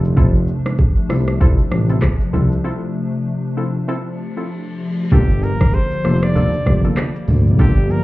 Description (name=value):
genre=afrobeats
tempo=97 BPM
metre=4/4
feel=swing 58% on 16ths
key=G dorian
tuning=A4 = 440 Hz
part: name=glassy wavetable pluck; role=accompaniment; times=0.0-8.0 s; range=Bb3 to A4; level=-26 LUFS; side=left 1 dB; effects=chorus
part: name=hollow soft pad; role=sustained chords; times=0.0-8.0 s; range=C3 to D4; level=-23 LUFS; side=left 1 dB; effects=ensemble chorus
part: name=mellow tuba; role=bass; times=0.0-8.0 s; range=F1 to D2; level=-17 LUFS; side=equal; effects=none
part: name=afro-pop drum kit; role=drums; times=0.0-8.0 s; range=handclaps, hi-hat, kick drum, rim click, shaker, toms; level=-16 LUFS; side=equal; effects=overdrive
part: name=congas and bongos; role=percussion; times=0.2-7.8 s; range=none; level=-23 LUFS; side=right 1 dB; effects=none
part: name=reverse cymbal and impact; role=sound effects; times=4.3-7.6 s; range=none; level=-34 LUFS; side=equal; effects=none
part: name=clear trumpet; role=melody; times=5.1-8.0 s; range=G4 to D5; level=-25 LUFS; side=left 1 dB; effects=ping-pong delay
room=little or no reverb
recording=heard muffled through a wall, club reverb, EQ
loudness=-14 LUFS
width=side -18 dB against mid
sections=0.0-5.1 A section; 5.1-8.0 B section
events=break 2.6-5.1; reverse cymbal 4.3-5.1; impact 5.1-7.6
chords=0.0 Dm7/F; 5.1 Gm7